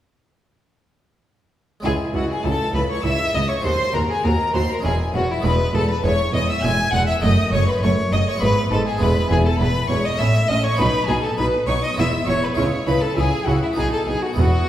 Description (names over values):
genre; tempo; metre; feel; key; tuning
classical, baroque-style concerto movement with solo episodes; 100 BPM; 3/4; straight; C# minor, E major from 9.0 s; A4 = 440 Hz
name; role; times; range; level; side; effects
rich chamber violin section; melody; 1.8-14.7 s; E5 to G#6; -27 LUFS; left 2 dB; none
rich studio violin section; second line; 1.8-14.7 s; E4 to G#5; -27 LUFS; left 2 dB; none
dark studio viola section; accompaniment; 1.8-14.5 s; G#3 to Gb4; -27 LUFS; right 1 dB; none
harpsichord; accompaniment; 1.8-14.7 s; C#2 to G#4; -29 LUFS; right 1 dB; none
clear symphonic cello section; bass; 1.8-14.5 s; C#2 to C#3; -24 LUFS; right 1 dB; none
rich chamber double bass section; bass; 1.8-14.5 s; E1 to Eb2; -24 LUFS; right 1 dB; none
rich violin; melody; 1.9-14.7 s; E4 to G#5; -24 LUFS; left 1 dB; none
room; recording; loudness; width
wet recital hall reverb, RT60 1.6 s; heard from further back in the room; -17 LUFS; side -12 dB against mid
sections
1.8-14.7 A section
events
none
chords
1.8 C#m; 3.6 Cdim/Eb; 4.8 C#m/E; 5.4 E; 7.2 D#dim/F#; 8.4 E/G#; 9.0 E; 10.2 A; 10.8 B; 12.0 E; 12.6 C#m; 13.8 B